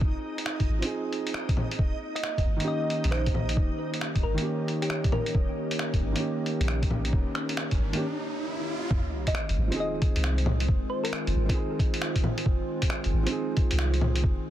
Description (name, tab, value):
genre	future garage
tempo	135 BPM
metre	4/4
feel	swing 64% on 16ths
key	F minor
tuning	A4 = 441 Hz
part	felt-muted upright piano	accompaniment	0.0-14.5 s	Eb3 to Ab4	-33 LUFS	right 3 dB	sidechain pumping, tape echo
part	soft 808-style bass	bass	0.0-14.4 s	Eb1 to C2	-27 LUFS	equal	sidechain pumping
part	electronic kick drum	drums	0.0-14.4 s	none	-26 LUFS	equal	none
part	backwards swelling texture	texture	0.0-8.0 s	Eb4 to Eb5	-40 LUFS	equal	built-in reverb
part	lo-fi sampler-style drum kit	drums	0.4-14.2 s	bongos, finger snaps, hi-hat	-33 LUFS	left 1 dB	soft clipping on snare
part	warbly tape-like pad	sustained chords	1.9-14.5 s	Eb3 to Db5	-35 LUFS	equal	chorus, built-in reverb, sidechain pumping
part	thumb-piano-like synth pluck	melody	2.2-5.5, 9.3-11.7 s	G4 to Eb5	-35 LUFS	left 1 dB	chorus, phaser, cassette tape, tape echo
part	riser and sub drop	sound effects	7.0-10.7 s	none	-36 LUFS	equal	none
room	digital ambience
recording	dense, heavily limited modern master, vinyl crackle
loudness	-25 LUFS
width	side -12 dB against mid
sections	0.0-8.9 A section; 8.9-14.5 B section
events	riser 7.0-8.9; break 8.0-8.9; impact 8.9-10.7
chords	0.0 Fm7; 1.8 Eb7; 8.9 Fm7